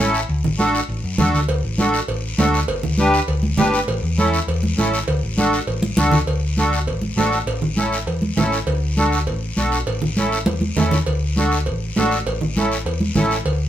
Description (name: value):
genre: latin, cumbia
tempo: 200 BPM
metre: 4/4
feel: straight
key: D major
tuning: A4 = 440 Hz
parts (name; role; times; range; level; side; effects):
- accordion; accompaniment; 0.0-13.4 s; C#4 to B4; -20 LUFS; right 1 dB; light tremolo tuning
- hollow-body short-scale picked electric bass; bass; 0.0-13.7 s; G1 to F#2; -22 LUFS; left 1 dB; none
- guiro; percussion; 0.0-13.7 s; none; -30 LUFS; left 4 dB; none
- congas; percussion; 0.4-13.3 s; none; -21 LUFS; right 1 dB; none
- cowbell and timbales; percussion; 1.5-13.6 s; none; -26 LUFS; right 3 dB; none
room: moderate studio reverb, RT60 0.6 s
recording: band playing live in one room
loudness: -17 LUFS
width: side -11 dB against mid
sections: 0.0-6.3 A section; 6.3-13.7 B section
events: drum fill 5.8-6.3, 10.5-11.1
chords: 0.3 D; 2.7 G; 3.9 A; 5.1 D; 7.5 A; 8.7 D; 9.9 A; 11.1 D; 12.3 A